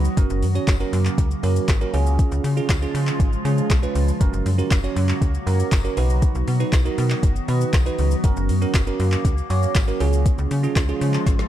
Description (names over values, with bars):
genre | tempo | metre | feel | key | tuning
dance-pop | 119 BPM | 4/4 | straight | F# major | A4 = 444 Hz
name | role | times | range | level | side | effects
bell-like tine electric piano | accompaniment | 0.0-11.4 s | C#4 to C#5 | -27 LUFS | right 8 dB | phaser
glassy FM pad | sustained chords | 0.0-11.5 s | C#3 to F#4 | -28 LUFS | equal | ensemble chorus, built-in reverb, sidechain pumping
slap-like FM bass | bass | 0.0-11.4 s | F#1 to C#3 | -21 LUFS | left 1 dB | sidechain pumping
smooth R&B drum kit | drums | 0.0-11.5 s | handclaps, hi-hat, kick drum, shaker, snare drum | -21 LUFS | equal | none
tambourine | percussion | 0.7-10.9 s | none | -43 LUFS | left 8 dB | none
room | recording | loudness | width
little or no reverb | dark, warm production | -18 LUFS | side -12 dB against mid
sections
0.0-11.5 A section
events
drum fill 11.3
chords
0.2 F#; 1.9 C#; 4.2 F#; 6.0 B; 8.2 F#; 10.0 C#